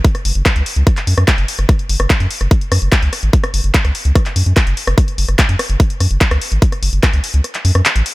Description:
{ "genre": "psychedelic trance", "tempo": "146 BPM", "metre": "4/4", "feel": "straight", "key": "F# minor", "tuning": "A4 = 440 Hz", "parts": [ { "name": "big-room dance drum kit", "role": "drums", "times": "0.0-8.1 s", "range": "handclaps, hi-hat, rim click", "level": "-18 LUFS", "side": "left 1 dB", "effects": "none" }, { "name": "electronic kick drum", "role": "drums", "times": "0.0-7.1 s", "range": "none", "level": "-13 LUFS", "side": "equal", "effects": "none" }, { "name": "round analog bass", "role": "bass", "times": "0.3-8.0 s", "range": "F#1 to F#2", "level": "-14 LUFS", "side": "equal", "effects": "none" } ], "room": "little or no reverb", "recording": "none", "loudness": "-12 LUFS", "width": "side -20 dB against mid", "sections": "0.0-8.1 A section", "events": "kick drops out 7.4-8.1", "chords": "none" }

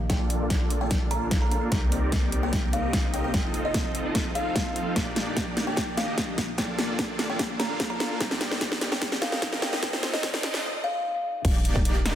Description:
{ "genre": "future bass", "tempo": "148 BPM", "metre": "4/4", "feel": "half-time", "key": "Eb lydian", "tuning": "A4 = 439 Hz", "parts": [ { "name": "ethereal airy pad", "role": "sustained chords", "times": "0.0-10.6 s", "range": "C3 to A4", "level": "-37 LUFS", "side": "left 1 dB", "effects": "ensemble chorus, built-in reverb, phaser, sidechain pumping" }, { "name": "warm 808-style bass", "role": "bass", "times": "0.0-12.2 s", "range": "Eb1 to C2", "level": "-33 LUFS", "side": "equal", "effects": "sidechain pumping" }, { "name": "buzzing kalimba", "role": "melody", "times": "0.1-11.1 s", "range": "Eb5 to Bb5", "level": "-33 LUFS", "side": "left 1 dB", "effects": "sidechain pumping, tape echo" }, { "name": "supersaw chords", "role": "riff", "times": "0.1-12.1 s", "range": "Bb3 to F5", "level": "-32 LUFS", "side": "right 1 dB", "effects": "sidechain pumping, low-pass filter" }, { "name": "big-room dance drum kit", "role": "drums", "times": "0.1-12.1 s", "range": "crash cymbal, hi-hat, snare drum", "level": "-29 LUFS", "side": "equal", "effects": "none" }, { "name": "electronic kick drum", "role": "drums", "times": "0.1-11.8 s", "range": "none", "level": "-28 LUFS", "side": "equal", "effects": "none" }, { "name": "riser", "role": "sound effects", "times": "8.0-10.6 s", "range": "none", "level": "-39 LUFS", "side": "equal", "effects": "none" } ], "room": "light reverb, digital ambience", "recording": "dense, heavily limited modern master, high-pass filter", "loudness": "-24 LUFS", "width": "side -11 dB against mid", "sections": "0.0-11.4 A section", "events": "build-up 0.0-11.4; drum fill 0.0-10.6; filter sweep on supersaw synth 0.0-11.4; filter sweep 0.0-11.4", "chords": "0.0 Bbmaj7; 1.7 Cm9; 3.3 F7; 5.0 Ebmaj7; 6.4 Bbmaj7; 8.2 Cm9; 9.8 F7; 11.4 Ebmaj7" }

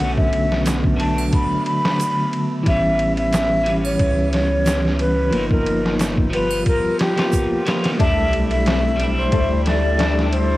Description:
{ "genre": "trip hop", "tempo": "90 BPM", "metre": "4/4", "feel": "swing 53% on 16ths", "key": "unclear", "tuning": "A4 = 440 Hz", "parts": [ { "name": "breathy mellow silver concert flute", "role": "melody", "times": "0.0-10.6 s", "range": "G4 to B5", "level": "-22 LUFS", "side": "equal", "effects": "cassette tape, tape echo" }, { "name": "electric guitar at the edge of break-up", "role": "accompaniment", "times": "0.0-10.6 s", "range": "D3 to F4", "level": "-22 LUFS", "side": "equal", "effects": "harmonic tremolo, cassette tape" }, { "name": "warm sub bass", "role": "bass", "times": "0.0-10.6 s", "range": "G1 to D2", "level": "-23 LUFS", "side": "equal", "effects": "none" }, { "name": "trip hop sampler-style drum kit", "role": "drums", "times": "0.0-10.5 s", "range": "kick drum, ride cymbal, snare drum", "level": "-23 LUFS", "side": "equal", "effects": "none" }, { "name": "bowed-like drone", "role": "texture", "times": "0.0-8.0 s", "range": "B3", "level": "-32 LUFS", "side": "right 2 dB", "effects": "none" }, { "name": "egg shaker and triangle", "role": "percussion", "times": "0.7-7.5 s", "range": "none", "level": "-36 LUFS", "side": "right 9 dB", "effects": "none" }, { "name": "string machine, cellos", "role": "sustained chords", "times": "8.0-10.6 s", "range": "G4 to E5", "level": "-29 LUFS", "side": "equal", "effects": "phaser, ensemble chorus, cassette tape" }, { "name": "flamenco guitar", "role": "arpeggios", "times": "8.0-10.6 s", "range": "A3 to D4", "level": "-26 LUFS", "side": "left 8 dB", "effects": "cassette tape, tape echo" }, { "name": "sub drop", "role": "sound effects", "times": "8.0-10.6 s", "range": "none", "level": "-30 LUFS", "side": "equal", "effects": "none" } ], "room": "light reverb", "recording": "home recording on cassette, vinyl crackle", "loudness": "-16 LUFS", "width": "side -17 dB against mid", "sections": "0.0-8.0 A section; 8.0-10.6 B section", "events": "filter sweep on clean electric guitar 0.0-8.0; impact 8.0-10.6", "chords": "0.0 Bm7; 2.7 A7; 5.3 G7alt; 8.0 C69/B" }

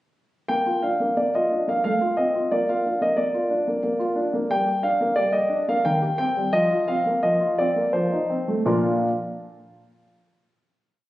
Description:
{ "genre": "classical-period piano sonatina", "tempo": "81-91 BPM", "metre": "3/4", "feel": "straight", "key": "Bb major", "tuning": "A4 = 439 Hz", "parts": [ { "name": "warm grand piano", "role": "solo", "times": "0.5-9.1 s", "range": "Bb2 to G5", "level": "-20 LUFS", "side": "equal", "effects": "none" } ], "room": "wet recital hall reverb, RT60 1.5 s", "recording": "recorded on a phone in the room, studio reverb", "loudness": "-20 LUFS", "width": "side -16 dB against mid", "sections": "0.5-8.7 theme; 8.7-10.8 final chord", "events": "slowing down 3.5-8.7", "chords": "0.5 Bb; 1.8 F/A; 2.5 Bb; 4.5 Gm; 5.9 Cm/Eb; 6.5 Fsus4; 7.9 F7; 8.7 Bb" }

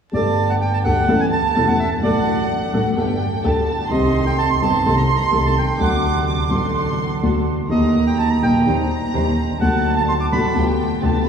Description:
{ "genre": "tango", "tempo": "127 BPM", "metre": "4/4", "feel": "rubato", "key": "G harmonic minor", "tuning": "A4 = 445 Hz", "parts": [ { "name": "bandoneon", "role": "melody", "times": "0.1-10.7 s", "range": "D5 to D6", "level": "-23 LUFS", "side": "right 4 dB", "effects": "none" }, { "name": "clear studio violin section", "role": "second line", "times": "0.1-11.3 s", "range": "F#5 to D6", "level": "-25 LUFS", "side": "right 2 dB", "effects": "none" }, { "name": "dark concert grand piano", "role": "accompaniment", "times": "0.1-11.2 s", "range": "E1 to A4", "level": "-18 LUFS", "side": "left 1 dB", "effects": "none" }, { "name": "muted studio string section", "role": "stabs", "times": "0.1-11.2 s", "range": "D3 to C5", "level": "-27 LUFS", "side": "right 3 dB", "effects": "none" } ], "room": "wet cathedral reverb, RT60 6.0 s", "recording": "recorded in a church or concert hall, vinyl crackle, small room ambience", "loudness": "-16 LUFS", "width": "side -7 dB against mid", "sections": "0.1-11.3 A section", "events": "none", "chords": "0.1 Gsus2; 1.1 A; 2.0 D/A; 3.0 Gsus2; 3.9 Cm; 4.9 Adim/C; 5.8 D; 7.7 Eb; 8.7 Cmadd9/Eb; 9.6 D; 10.6 G7/D" }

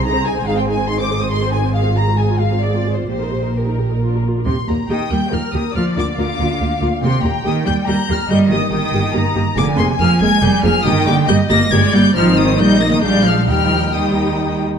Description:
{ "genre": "quick classical-period movement for string orchestra", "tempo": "128-145 BPM", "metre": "3/4", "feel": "rubato", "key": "Eb major", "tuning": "A4 = 441 Hz", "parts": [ { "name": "clear chamber violin section", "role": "second line", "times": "0.0-14.6 s", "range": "Bb4 to Eb6", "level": "-24 LUFS", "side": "left 3 dB", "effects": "none" }, { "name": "warm chamber viola section", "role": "accompaniment", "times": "0.0-14.6 s", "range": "G3 to C5", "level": "-20 LUFS", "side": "equal", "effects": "none" }, { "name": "dark chamber double bass section", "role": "bass", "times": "0.0-14.7 s", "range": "F1 to Eb2", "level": "-20 LUFS", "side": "right 2 dB", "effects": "none" }, { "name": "warm chamber cello section", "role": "bass", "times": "0.0-14.6 s", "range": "Ab2 to Bb3", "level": "-19 LUFS", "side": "right 2 dB", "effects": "none" }, { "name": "warm chamber violin section", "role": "melody", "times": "0.1-14.6 s", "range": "Bb4 to Bb6", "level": "-22 LUFS", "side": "left 5 dB", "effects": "none" } ], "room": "moderate scoring stage reverb, RT60 1.8 s", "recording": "dark, warm production", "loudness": "-14 LUFS", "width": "side -7 dB against mid", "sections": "0.0-4.5 A section; 4.5-14.8 B section", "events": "none", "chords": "0.5 Ab; 1.7 Fm/Ab; 3.1 Eb/Bb; 4.0 Bb; 4.5 Eb; 5.8 Bb/D; 7.0 Eb; 8.3 Eb/G; 9.6 Bb7/F; 10.9 Eb/G; 12.2 Ab; 12.6 Eb/Bb; 13.0 Bb7; 13.5 Eb" }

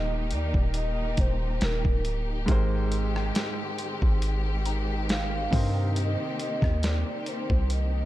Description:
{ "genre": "contemporary R&B", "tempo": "69 BPM", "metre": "4/4", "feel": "swing 54% on 16ths", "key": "unclear", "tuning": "A4 = 440 Hz", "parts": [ { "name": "warm velvety synth lead", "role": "melody", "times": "0.0-8.1 s", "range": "Bb4 to F5", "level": "-35 LUFS", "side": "right 1 dB", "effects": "chorus, tape echo" }, { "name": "clear grand piano", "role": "accompaniment", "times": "0.0-8.1 s", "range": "Ab2 to C5", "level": "-35 LUFS", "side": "right 1 dB", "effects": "none" }, { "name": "warm studio string section", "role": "sustained chords", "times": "0.0-8.1 s", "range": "Eb3 to G4", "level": "-34 LUFS", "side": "left 2 dB", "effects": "sidechain pumping" }, { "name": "warm 808-style bass", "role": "bass", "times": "0.0-8.1 s", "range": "D1 to G2", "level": "-27 LUFS", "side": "equal", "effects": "none" }, { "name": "dusty soul sampler-style drum kit", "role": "drums", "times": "0.3-7.9 s", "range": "hi-hat, kick drum, rim click, snare drum", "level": "-27 LUFS", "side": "equal", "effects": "none" }, { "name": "mallet-like synth pluck", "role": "texture", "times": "4.7-5.9 s", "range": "Bb5", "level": "-46 LUFS", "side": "left 12 dB", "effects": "none" } ], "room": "digital ambience", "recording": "dark, warm production", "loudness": "-24 LUFS", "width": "side -15 dB against mid", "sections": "0.0-8.1 A section", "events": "none", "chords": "0.0 Ebmaj7; 2.5 Abmaj7; 5.5 Cm7" }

